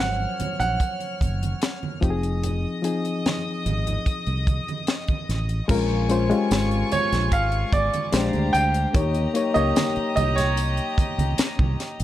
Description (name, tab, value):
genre	lush 1970s-style soul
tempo	74 BPM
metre	4/4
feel	straight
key	Bb dorian from 5.7 s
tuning	A4 = 439 Hz
part	bright baby grand piano	melody	0.0-1.8, 6.9-11.7 s	Db5 to G5	-25 LUFS	right 3 dB	none
part	warm studio string section	second line	0.0-12.0 s	F4 to F6	-32 LUFS	left 1 dB	none
part	reed electric piano	accompaniment	0.0-12.0 s	F3 to Db5	-27 LUFS	left 4 dB	none
part	fingered electric bass	bass	0.0-12.0 s	F1 to Eb2	-24 LUFS	equal	none
part	tight funk drum kit	drums	0.0-12.0 s	crash cymbal, hi-hat, kick drum, snare drum	-24 LUFS	equal	none
part	congas	percussion	0.0-11.8 s	none	-34 LUFS	right 6 dB	none
part	tambourine	percussion	5.7-12.0 s	none	-40 LUFS	right 9 dB	none
room	small room reverb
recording	dark, warm production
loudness	-21 LUFS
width	side -13 dB against mid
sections	0.0-5.7 A section; 5.7-12.0 B section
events	none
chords	0.0 Gbmaj7; 2.0 Fm7; 5.7 Bbm7; 8.1 Bb13; 8.9 Eb7